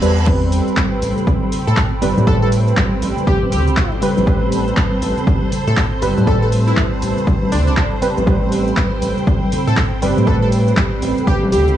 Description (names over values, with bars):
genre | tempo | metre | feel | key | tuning
deep house | 120 BPM | 4/4 | swing 61% on 16ths | A minor | A4 = 440 Hz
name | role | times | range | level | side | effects
hollow soft pad | sustained chords | 0.0-11.8 s | C4 to B5 | -25 LUFS | right 2 dB | ensemble chorus, sidechain pumping
warm analog keys | stabs | 0.0-11.5 s | G3 to B4 | -20 LUFS | right 2 dB | chorus, vintage 12-bit sampler grit, sidechain pumping
round analog bass | bass | 0.0-11.7 s | G1 to A2 | -17 LUFS | equal | none
punchy analog drum machine | drums | 0.0-11.8 s | crash cymbal, handclaps, hi-hat, shaker | -25 LUFS | equal | overdrive, vintage 12-bit sampler grit
electronic kick drum | drums | 0.3-11.4 s | none | -18 LUFS | equal | vintage 12-bit sampler grit
string machine, violins | texture | 0.3-11.8 s | C5 | -30 LUFS | right 1 dB | ensemble chorus, sidechain pumping
congas | percussion | 0.8-11.6 s | none | -25 LUFS | left 3 dB | none
plucky unison lead | melody | 1.7-11.8 s | D4 to A4 | -23 LUFS | equal | wide subtle chorus, tape echo
room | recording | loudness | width
little or no reverb | small room reverb | -14 LUFS | side -11 dB against mid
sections
0.0-11.8 A section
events
none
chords
0.0 Am9